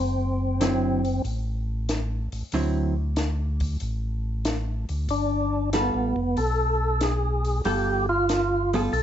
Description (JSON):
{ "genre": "soul jazz organ trio", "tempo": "94 BPM", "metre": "4/4", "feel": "swing 68% on 8ths", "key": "D mixolydian", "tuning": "A4 = 437 Hz", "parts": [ { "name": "percussive tonewheel organ", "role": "melody", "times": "0.0-1.2, 5.1-9.0 s", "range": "B3 to A4", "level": "-25 LUFS", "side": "equal", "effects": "slow rotary speaker, overdrive, chorus vibrato" }, { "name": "mellow tonewheel organ", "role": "bass", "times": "0.0-9.0 s", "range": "F1 to D2", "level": "-26 LUFS", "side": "equal", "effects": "slow rotary speaker" }, { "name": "vintage hollow-body jazz guitar", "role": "accompaniment", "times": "0.6-8.9 s", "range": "D3 to A4", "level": "-27 LUFS", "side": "right 2 dB", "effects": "none" }, { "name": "compact cocktail drum kit", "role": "drums", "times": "0.6-9.0 s", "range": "hi-hat, kick drum, snare drum", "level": "-31 LUFS", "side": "left 1 dB", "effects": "none" } ], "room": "light reverb", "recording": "nothing above 7.9 kHz", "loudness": "-23 LUFS", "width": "side -10 dB against mid", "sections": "0.0-9.0 A section", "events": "none", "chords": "0.0 D9; 5.1 G9" }